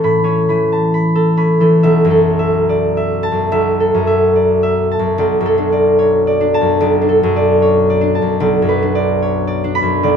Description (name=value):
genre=classical, solo harp piece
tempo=66-77 BPM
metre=4/4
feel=rubato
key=B minor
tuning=A4 = 444 Hz
part: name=concert harp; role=solo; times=0.0-10.2 s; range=B1 to C#6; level=-12 LUFS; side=equal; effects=none
room=moderate stone room reverb, RT60 1.0 s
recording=minimal, uncompressed stereo recording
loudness=-12 LUFS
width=side -7 dB against mid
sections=0.0-1.8 A section; 1.8-10.2 B section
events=none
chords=0.0 Aadd9; 1.8 Bm11; 5.2 Dmaj7/B; 8.4 Bmadd9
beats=0.02 0.92 | 1.81 2.67 3.50 4.34 | 5.17 5.99 6.81 7.61 | 8.42 9.23 10.01